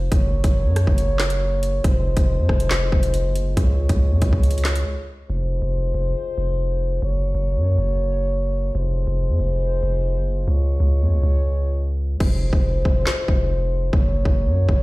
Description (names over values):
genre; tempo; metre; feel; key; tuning
hip hop, drill; 139 BPM; 4/4; half-time; F phrygian; A4 = 440 Hz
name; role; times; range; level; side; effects
mellow French horn section; sustained chords; 0.0-14.8 s; Ab3 to Db5; -27 LUFS; left 1 dB; none
long sustained 808-style bass; bass; 0.0-14.8 s; F1 to Gb2; -20 LUFS; equal; none
drill drum kit; drums; 0.1-4.9, 12.2-14.8 s; crash cymbal, handclaps, hi-hat, kick drum, rim click, snare drum; -20 LUFS; equal; none
room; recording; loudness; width
little or no reverb; played on a big sound system in a bare room, stone room reverb; -18 LUFS; side -21 dB against mid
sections
0.0-5.3 A section; 5.3-12.2 B section; 12.2-14.8 C section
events
break 4.9-5.3; hi-hats muted 12.2-14.8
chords
0.1 Gb; 1.8 Fm; 3.6 Db; 5.3 Fm; 7.0 Gb; 8.8 Fm; 10.5 Db; 12.2 Fm; 13.9 Gb